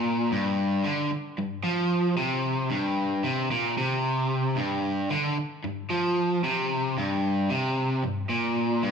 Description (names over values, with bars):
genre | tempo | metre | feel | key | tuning
rock | 113 BPM | 4/4 | straight | G minor | A4 = 440 Hz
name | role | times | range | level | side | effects
crunchy overdriven guitar | solo | 0.0-8.9 s | G2 to F3 | -24 LUFS | equal | none
room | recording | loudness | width
wet large studio reverb, RT60 1.1 s | band playing live in one room | -24 LUFS | side -6 dB against mid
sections
0.0-4.6 A section; 4.6-8.9 B section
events
none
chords
none